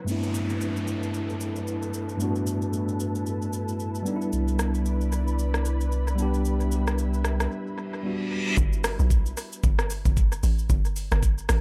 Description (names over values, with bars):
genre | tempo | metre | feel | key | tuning
amapiano | 113 BPM | 4/4 | swing 58% on 16ths | G major | A4 = 437 Hz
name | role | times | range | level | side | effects
tine electric piano | accompaniment | 0.0-8.6 s | G2 to G4 | -31 LUFS | equal | low-pass filter, tape echo
ethereal airy pad | sustained chords | 0.0-8.6 s | E4 to B5 | -40 LUFS | equal | ensemble chorus, built-in reverb, sidechain pumping, low-pass filter
smooth R&B drum kit | drums | 0.1-11.6 s | hi-hat, kick drum, rim click, shaker | -30 LUFS | equal | tape echo
downlifter and reverse cymbal | sound effects | 0.1-4.3, 8.1-8.6 s | none | -38 LUFS | equal | none
warm sub bass | bass | 4.3-7.5 s | C2 | -27 LUFS | equal | none
tight log drum bass | bass | 8.6-11.6 s | G1 to B1 | -27 LUFS | equal | none
room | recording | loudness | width
digital ambience | echo-heavy mix | -26 LUFS | mono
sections
0.1-8.6 A section; 8.6-11.6 B section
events
filter sweep 0.1-8.6; break 7.5-8.6; reverse cymbal 8.1-8.6; drop 8.6-11.6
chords
0.1 G69; 4.1 Cmaj9; 8.6 Gsus2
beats
| 0.08 0.61 1.14 1.67 | 2.20 2.73 3.26 3.79 | 4.33 4.86 5.39 5.92 | 6.45 6.98 7.51 8.04 | 8.57 9.11 9.64 10.17 | 10.70 11.23